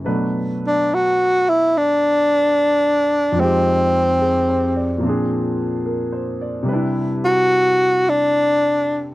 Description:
jazz; 73 BPM; 4/4; swing 67% on 8ths; A4 = 440 Hz
warm grand piano; accompaniment; 0.0-9.1 s; F2 to D5; -22 LUFS; equal
breathy tenor saxophone; melody; 0.7-9.1 s; C4 to F#4; -15 LUFS; equal
light reverb; dry, close 1970s-style studio recording; -15 LUFS; side -17 dB against mid
0.1-9.1 A section
0.1 Bm7; 3.4 Fm7; 5.0 Bb9; 6.7 Cmaj9
| 0.06 0.89 1.72 2.54 | 3.37 4.20 5.02 5.85 | 6.67 7.50 8.32 9.14

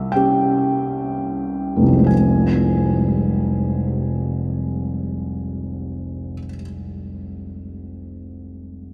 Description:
classical, romantic nocturne for solo piano; 29-35 BPM; 4/4; rubato; F minor; A4 = 439 Hz
felt-muted upright piano; solo; 0.0-8.9 s; F1 to Ab5; -21 LUFS; equal
wet cathedral reverb, RT60 6.3 s; in a vast, echoing space; -20 LUFS; mono
0.0-2.1 A section; 2.1-8.9 B section
slowing down 0.0-2.1
0.0 C; 2.1 Fm
0.14 | 2.10 3.94 5.70 7.43

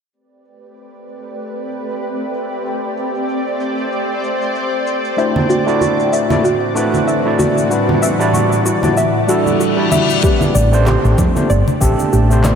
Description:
sunset chillout; 95 BPM; 4/4; swing 57% on 16ths; A dorian; A4 = 439 Hz
shimmering ambient pad; sustained chords; 1.0-12.6 s; A2 to D5; -19 LUFS; left 1 dB; chorus, built-in reverb
electronic shaker, handclaps and congas; drums; 0.1-12.6 s; -24 LUFS; left 2 dB; low-pass filter on perc, low-pass filter on snare, low-pass filter on room
overdriven tine electric piano; accompaniment; 5.2-12.6 s; G3 to D5; -17 LUFS; moving between left 3 dB and right 4 dB; auto-pan, digital delay, slapback echo
soft round pluck; arpeggios; 5.2-12.6 s; F#4 to E5; -19 LUFS; left 1 dB; chorus, digital delay, slapback echo
congas; percussion; 5.4-12.6 s; -21 LUFS; right 3 dB; slapback echo
reverse cymbal; sound effects; 9.4-10.2 s; -23 LUFS; left 7 dB
electronic kick drum; drums; 10.2-12.0 s; -16 LUFS; equal
woody fretless electric bass; bass; 10.6-12.5 s; G1 to A1; -13 LUFS; equal; lush chorus
wet lush hall reverb, RT60 2.7 s; big arena sound; -13 LUFS; side -7 dB against mid
0.1-10.2 A section; 10.2-12.6 B section
reverse cymbal 9.4-10.2
0.1 Am11; 5.2 D9/A; 7.7 Em9/A; 10.2 Am11
| 0.13 0.76 1.39 2.02 | 2.66 3.29 3.92 4.55 | 5.18 5.81 6.45 7.08 | 7.71 8.34 8.97 9.60 | 10.23 10.87 11.50 12.13

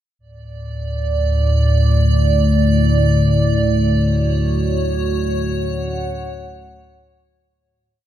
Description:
dark ambient drone; 65 BPM; 4/4; straight; A4 = 438 Hz
analog drone; drone; 0.6-7.7 s; D2 to A2; -16 LUFS; equal; lush chorus
icy glass pad; texture; 0.8-7.6 s; C#5 to D5; -23 LUFS; right 4 dB; chorus, built-in reverb
dark analog pad; sustained chords; 3.9-7.6 s; F#4 to F#5; -27 LUFS; right 5 dB; chorus
wet cathedral reverb, RT60 6.3 s; dark, warm production; -14 LUFS; side -11 dB against mid
0.2-7.6 A section
fade-out 3.9-7.6
0.2 D5; 3.9 F#5
| 0.19 1.12 2.04 2.96 | 3.89 4.81 5.73 6.66

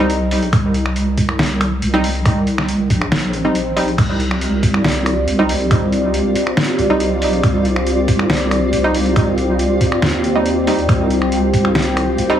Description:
deep dubstep; 139 BPM; 4/4; half-time; C minor; A4 = 440 Hz
filtered dub chord stab; stabs; 0.0-12.4 s; G3 to Eb4; -20 LUFS; right 1 dB; chorus, dub echo
deep soft wobble bass; bass; 0.0-12.4 s; Bb1 to Eb2; -19 LUFS; equal; chorus
trip hop sampler-style drum kit; drums; 0.1-12.3 s; crash cymbal, finger snaps, hi-hat, snare drum; -21 LUFS; equal
electronic kick drum; drums; 0.5-11.6 s; -16 LUFS; equal
swell; sound effects; 3.2-4.0 s; -26 LUFS; right 1 dB
dark analog pad; sustained chords; 4.2-12.4 s; C4 to G5; -19 LUFS; left 1 dB; chorus
flickering grainy texture; texture; 4.3-12.4 s; F4; -24 LUFS; right 1 dB; built-in reverb
light reverb; heavily compressed radio sound, vinyl crackle, small room reverb; -14 LUFS; side -10 dB against mid
0.0-12.4 A section
swell 3.2-4.0
0.0 Cm
0.10 | 0.53 0.96 1.39 1.82 | 2.25 2.69 3.12 3.55 | 3.98 4.41 4.84 5.28 | 5.71 6.14 6.57 7.00 | 7.43 7.87 8.30 8.73 | 9.16 9.59 10.02 10.46 | 10.89 11.32 11.75 12.18

